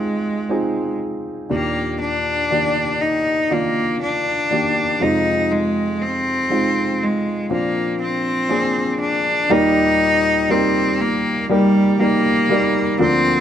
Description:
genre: pop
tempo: 60 BPM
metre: 4/4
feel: straight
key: Eb major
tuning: A4 = 441 Hz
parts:
  - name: bright cello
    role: melody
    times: 0.0-13.4 s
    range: G3 to Eb4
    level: -18 LUFS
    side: equal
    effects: none
  - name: dark grand piano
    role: accompaniment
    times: 0.0-13.4 s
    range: D2 to D5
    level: -20 LUFS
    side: equal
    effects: none
room: moderate echo chamber reverb, RT60 1.4 s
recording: none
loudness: -16 LUFS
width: side -9 dB against mid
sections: 0.0-9.5 A section; 9.5-13.4 B section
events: none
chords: 0.0 Ab6; 1.5 Ebmaj7; 5.0 Fm7; 7.5 Bbadd9; 9.5 Eb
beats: 0.51 | 1.51 2.51 3.51 4.51 | 5.51 6.51 7.51 8.51 | 9.51 10.51 11.51 12.51

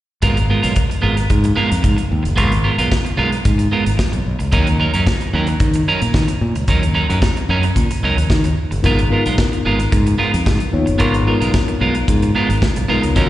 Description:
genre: disco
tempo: 111 BPM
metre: 4/4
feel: straight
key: G# dorian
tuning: A4 = 440 Hz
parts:
  - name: electric guitar at the edge of break-up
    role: accompaniment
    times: 0.2-13.3 s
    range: F#3 to A#4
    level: -20 LUFS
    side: right 3 dB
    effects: spring reverb, slapback echo
  - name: modern bright fingered electric bass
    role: bass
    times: 0.2-13.3 s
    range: F#1 to D#3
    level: -17 LUFS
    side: equal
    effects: none
  - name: modern studio drum kit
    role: drums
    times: 0.2-13.3 s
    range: hi-hat, kick drum, snare drum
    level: -19 LUFS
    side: equal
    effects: none
  - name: mellow reed electric piano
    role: accompaniment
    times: 8.8-13.3 s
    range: B3 to C#5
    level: -21 LUFS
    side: left 5 dB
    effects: fast tremolo, slapback echo
room: little or no reverb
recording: live gig heard through the venue's PA, recital hall reverb, nothing above 10.9 kHz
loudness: -14 LUFS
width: side -14 dB against mid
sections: 0.2-13.3 A section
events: none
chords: 0.2 G#m69; 4.5 D#m7; 8.8 G#m69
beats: | 0.23 0.77 1.30 1.84 | 2.38 2.91 3.45 3.99 | 4.53 5.06 5.60 6.14 | 6.68 7.22 7.76 8.30 | 8.84 9.38 9.92 10.46 | 11.00 11.54 12.08 12.62 | 13.16

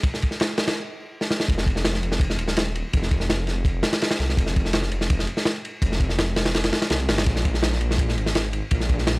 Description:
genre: drum and bass, jungle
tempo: 166 BPM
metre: 4/4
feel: straight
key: F minor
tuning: A4 = 440 Hz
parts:
  - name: crunchy breakbeat drum kit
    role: drums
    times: 0.0-9.2 s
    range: kick drum, ride cymbal, snare drum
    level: -22 LUFS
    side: equal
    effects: none
  - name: detuned saw bass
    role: bass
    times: 1.5-9.2 s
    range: Eb1 to C2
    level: -25 LUFS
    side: equal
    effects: none
room: little or no reverb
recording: dry, gritty hardware recording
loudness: -20 LUFS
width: side -28 dB against mid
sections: 0.0-1.5 A section; 1.5-9.2 B section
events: build-up 0.0-1.5; stop 0.8-1.5; drum fill 1.2; drop 1.5-9.2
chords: none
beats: | 0.04 0.40 0.76 1.12 | 1.49 1.85 2.21 2.57 | 2.93 3.29 3.65 4.01 | 4.38 4.74 5.10 5.46 | 5.82 6.18 6.54 6.91 | 7.27 7.63 7.99 8.35 | 8.71 9.07

